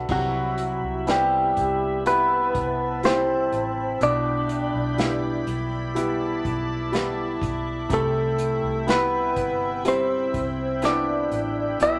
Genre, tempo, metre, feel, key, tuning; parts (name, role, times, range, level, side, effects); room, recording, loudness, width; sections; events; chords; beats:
pop ballad; 62 BPM; 4/4; straight; A4 = 441 Hz
warm concert grand piano; accompaniment; 0.0-12.0 s; B2 to A5; -31 LUFS; equal
lush unison pad; sustained chords; 0.0-12.0 s; E4 to B5; -35 LUFS; equal; chorus
vintage muted fingered electric bass; bass; 0.0-12.0 s; G1 to C2; -35 LUFS; equal
direct-recorded clean electric guitar; melody; 0.1-12.0 s; F#3 to E5; -25 LUFS; equal
unplugged drum kit; drums; 0.1-12.0 s; crash cymbal, hi-hat, kick drum, snare drum; -32 LUFS; equal
wet small room reverb, RT60 0.5 s; -24 LUFS; mono
0.1-12.0 A section
0.1 Cmaj7; 4.0 G6/B; 7.9 Cmaj7
| 0.10 1.08 2.06 3.04 | 4.01 4.99 5.96 6.93 | 7.90 8.88 9.85 10.83 | 11.80